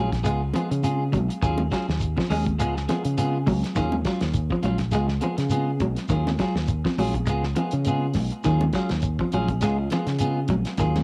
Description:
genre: afrobeat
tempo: 103 BPM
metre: 4/4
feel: swing 56% on 16ths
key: unclear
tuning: A4 = 440 Hz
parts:
  - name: electric guitar at the edge of break-up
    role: arpeggios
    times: 0.0-11.0 s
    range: Eb3 to Ab3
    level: -29 LUFS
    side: equal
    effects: cassette tape
  - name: clean electric guitar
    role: stabs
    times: 0.0-11.0 s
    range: Gb3 to Ab4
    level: -32 LUFS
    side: equal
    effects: spring reverb, cassette tape, tape echo
  - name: fingered electric bass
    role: bass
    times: 0.0-11.0 s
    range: Bb1 to Db3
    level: -28 LUFS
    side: equal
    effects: none
  - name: cloth-damped thuddy drum kit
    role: drums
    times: 0.1-11.0 s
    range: hi-hat, kick drum, snare drum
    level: -33 LUFS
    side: equal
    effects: none
  - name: shekere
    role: percussion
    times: 0.2-10.9 s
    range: none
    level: -32 LUFS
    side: equal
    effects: none
  - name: congas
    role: percussion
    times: 0.3-11.0 s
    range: none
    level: -33 LUFS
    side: equal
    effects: none
room: light reverb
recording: home recording on cassette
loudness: -24 LUFS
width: mono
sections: 0.0-11.0 A section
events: none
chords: 0.3 Db7; 1.4 Ebm11; 2.6 Db7; 3.8 Ebm11; 4.9 Db7; 6.1 Ebm11; 7.3 Db7; 8.4 Ebm11; 9.6 Db7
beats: 0.26 0.84 | 1.43 2.01 2.60 3.18 | 3.77 4.35 4.94 5.52 | 6.11 6.69 7.28 7.86 | 8.45 9.03 9.62 10.20 | 10.79

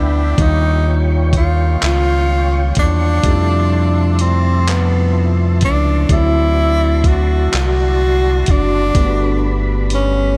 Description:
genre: slow six-eight R&B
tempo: 42 BPM (dotted quarters)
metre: 6/8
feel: straight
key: unclear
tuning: A4 = 441 Hz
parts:
  - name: breathy tenor saxophone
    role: melody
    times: 0.0-10.4 s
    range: B3 to F#4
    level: -20 LUFS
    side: equal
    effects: analog delay
  - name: barky tine electric piano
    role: accompaniment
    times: 0.0-10.4 s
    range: C3 to C#5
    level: -26 LUFS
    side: equal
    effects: overdrive, lush chorus
  - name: tonewheel organ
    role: sustained chords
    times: 0.0-10.4 s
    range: F3 to C#6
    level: -28 LUFS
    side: equal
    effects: chorus vibrato, slow rotary speaker
  - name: round analog bass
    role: bass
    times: 0.0-10.4 s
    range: F#1 to F2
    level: -18 LUFS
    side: equal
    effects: none
  - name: dusty soul sampler-style drum kit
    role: drums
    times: 0.4-10.1 s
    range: handclaps, hi-hat, kick drum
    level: -19 LUFS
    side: equal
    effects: none
room: moderate huge ambient reverb, RT60 7.4 s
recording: dreamy mix soaked in reverb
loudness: -15 LUFS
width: mono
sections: 0.0-10.4 A section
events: none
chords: 0.4 D#9; 3.2 Fmaj7; 6.1 D7; 8.9 Gmaj7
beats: | 0.38 1.80 | 3.23 4.66 | 6.09 7.52 | 8.95

